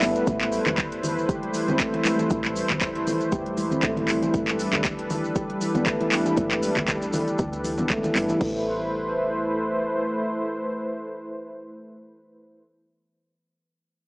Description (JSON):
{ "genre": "afro house", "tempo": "118 BPM", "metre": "4/4", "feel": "swing 55% on 16ths", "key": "A minor", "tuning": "A4 = 440 Hz", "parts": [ { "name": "warm analog pad", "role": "sustained chords", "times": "0.0-12.6 s", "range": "G3 to C5", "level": "-28 LUFS", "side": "equal", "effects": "chorus, tremolo, sidechain pumping" }, { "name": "handpan", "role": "arpeggios", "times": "0.0-8.6 s", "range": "E3 to G4", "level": "-26 LUFS", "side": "equal", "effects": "sidechain pumping, tape echo" }, { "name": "woody FM bass", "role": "bass", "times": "0.0-9.9 s", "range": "D1 to D2", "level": "-34 LUFS", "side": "equal", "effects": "sidechain pumping" }, { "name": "afro-pop drum kit", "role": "drums", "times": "0.0-8.5 s", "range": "crash cymbal, handclaps, hi-hat", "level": "-28 LUFS", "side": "equal", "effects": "none" }, { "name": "tube shaker", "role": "percussion", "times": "0.0-8.4 s", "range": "none", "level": "-41 LUFS", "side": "equal", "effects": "none" }, { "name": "electronic kick drum", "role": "drums", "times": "0.3-8.5 s", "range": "none", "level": "-29 LUFS", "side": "equal", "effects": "none" }, { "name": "congas", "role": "percussion", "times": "0.3-8.1 s", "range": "none", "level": "-32 LUFS", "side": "equal", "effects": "none" } ], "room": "light reverb, small room ambience", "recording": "dry, gritty hardware recording, transformer saturation, small speaker sound", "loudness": "-22 LUFS", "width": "side -27 dB against mid", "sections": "0.0-8.4 A section; 8.4-12.5 B section", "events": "drop 0.0-8.4", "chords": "0.3 Am; 4.3 Gadd9; 8.4 Am" }